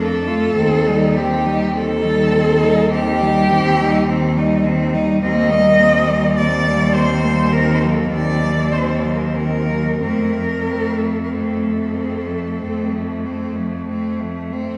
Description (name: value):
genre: classical, lyrical piece for cello ensemble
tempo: 45-53 BPM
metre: 4/4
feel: rubato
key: unclear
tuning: A4 = 440 Hz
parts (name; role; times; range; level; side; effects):
- warm cello; melody; 0.0-13.9 s; G4 to Eb5; -21 LUFS; equal; none
- clear cello; second line; 0.0-14.8 s; A3 to F4; -28 LUFS; equal; none
- clear cello; accompaniment; 0.0-14.8 s; Eb3 to Bb3; -24 LUFS; equal; none
- rich cello; bass; 0.0-14.8 s; Eb2 to F2; -22 LUFS; equal; none
room: wet recital hall reverb, RT60 1.6 s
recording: heard from further back in the room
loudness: -17 LUFS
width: mono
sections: 0.0-14.8 A section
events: none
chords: 0.0 Dm/F; 0.6 Cm/Eb; 5.2 Cm7/Eb; 7.5 Cm7b5/Eb; 10.0 F